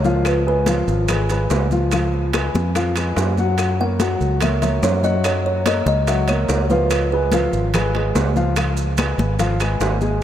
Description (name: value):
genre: Afro-Cuban jazz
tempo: 144 BPM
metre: 4/4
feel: straight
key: Db mixolydian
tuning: A4 = 440 Hz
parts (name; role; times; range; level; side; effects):
- kalimba; melody; 0.0-8.3 s; Bb4 to Gb5; -24 LUFS; right 1 dB; none
- dark baby grand piano; accompaniment; 0.0-10.2 s; F3 to Ab5; -22 LUFS; left 3 dB; none
- fingered electric bass; bass; 0.0-10.2 s; Ab1 to Gb2; -20 LUFS; right 1 dB; none
- bongos; percussion; 0.0-10.2 s; none; -30 LUFS; left 6 dB; none
- congas; percussion; 0.0-10.2 s; none; -28 LUFS; left 2 dB; none
- maracas; percussion; 0.0-10.2 s; none; -35 LUFS; right 8 dB; none
- timbales; percussion; 0.2-10.0 s; none; -27 LUFS; right 5 dB; none
- claves; percussion; 0.3-9.8 s; none; -37 LUFS; left 6 dB; none
room: moderate cathedral reverb, RT60 5.3 s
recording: in a vast, echoing space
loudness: -16 LUFS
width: side -10 dB against mid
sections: 0.0-10.2 A section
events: none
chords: 0.3 Db7; 3.6 Gb; 6.9 Db7